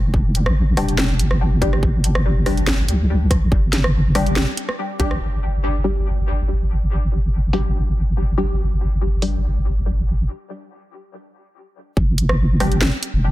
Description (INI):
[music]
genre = deep dubstep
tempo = 142 BPM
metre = 4/4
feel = swing 53% on 16ths, half-time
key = unclear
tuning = A4 = 440 Hz
[part]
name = deep soft wobble bass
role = bass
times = 0.0-13.3 s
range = F1 to C2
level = -18 LUFS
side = equal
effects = chorus
[part]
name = electronic kick drum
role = drums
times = 0.1-5.1, 12.0-12.1 s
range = none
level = -19 LUFS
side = equal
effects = overdrive
[part]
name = garage drum kit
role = drums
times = 0.3-9.3, 12.2-13.1 s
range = crash cymbal, hi-hat, rim click, snare drum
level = -24 LUFS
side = right 1 dB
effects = overdrive, low-pass filter on hats, low-pass filter on snare, low-pass filter on cymbals
[part]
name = filtered dub chord stab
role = stabs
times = 0.8-9.3, 12.6-12.7 s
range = G3 to G4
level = -26 LUFS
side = left 2 dB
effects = ensemble chorus, dub echo
[sound]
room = little or no reverb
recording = dense, heavily limited modern master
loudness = -17 LUFS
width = side -16 dB against mid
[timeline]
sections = 0.0-5.2 A section; 5.2-12.0 B section; 12.0-13.3 C section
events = filter sweep on synth stab 5.2-12.0; break 10.3-12.0; drop 12.0-13.3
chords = 0.0 G5